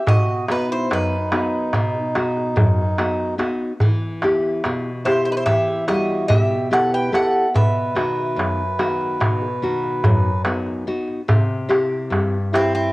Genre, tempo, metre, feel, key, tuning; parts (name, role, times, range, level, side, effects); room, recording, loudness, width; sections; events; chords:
greek folk, Greek bouzouki band; 144 BPM (eighths); 9/8; straight; A4 = 440 Hz
Greek bouzouki; melody; 0.0-12.9 s; C4 to G5; -23 LUFS; equal; cassette tape
mellow accordion; second line; 0.0-12.9 s; D#4 to B4; -25 LUFS; right 2 dB; cassette tape
nylon-string guitar; accompaniment; 0.1-12.9 s; F#2 to G4; -21 LUFS; left 1 dB; cassette tape
darbuka; percussion; 0.1-12.7 s; -20 LUFS; equal
moderate spring reverb, RT60 1.6 s; home recording on cassette; -17 LUFS; side -20 dB against mid
0.0-11.3 A section; 11.3-12.9 A section
0.1 B; 3.8 Em; 7.5 B; 11.3 C